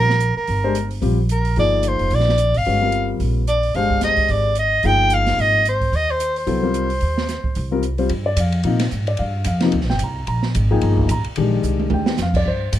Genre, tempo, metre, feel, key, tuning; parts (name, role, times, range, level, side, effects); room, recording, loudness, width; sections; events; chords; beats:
modal jazz; 220 BPM; 4/4; swing 59% on 8ths; G phrygian; A4 = 441 Hz
mellow soprano saxophone; melody; 0.0-7.8 s; Bb4 to G5; -19 LUFS; equal
warm concert grand piano; accompaniment; 0.0-12.7 s; C3 to Bb5; -22 LUFS; left 5 dB
upright bass; bass; 0.0-12.8 s; F1 to Bb2; -20 LUFS; right 1 dB
open jazz drum kit; drums; 0.1-12.8 s; crash cymbal, hi-hat, kick drum, ride cymbal, snare drum, toms; -26 LUFS; right 3 dB
little or no reverb; close, detailed microphones; -16 LUFS; side -12 dB against mid
0.0-8.1 A section; 8.1-12.8 B section
drum fill 11.6-12.2
0.0 Gm7; 3.7 Ab/G; 8.1 Gm7
0.21 | 0.48 0.75 1.02 1.30 | 1.57 1.84 2.11 2.38 | 2.66 2.93 3.20 3.47 | 3.75 4.02 4.29 4.56 | 4.83 5.11 5.38 5.65 | 5.92 6.20 6.47 6.74 | 7.01 7.29 7.56 7.83 | 8.10 8.38 8.65 8.92 | 9.19 9.46 9.74 10.01 | 10.28 10.55 10.82 11.10 | 11.37 11.64 11.91 12.19 | 12.46 12.73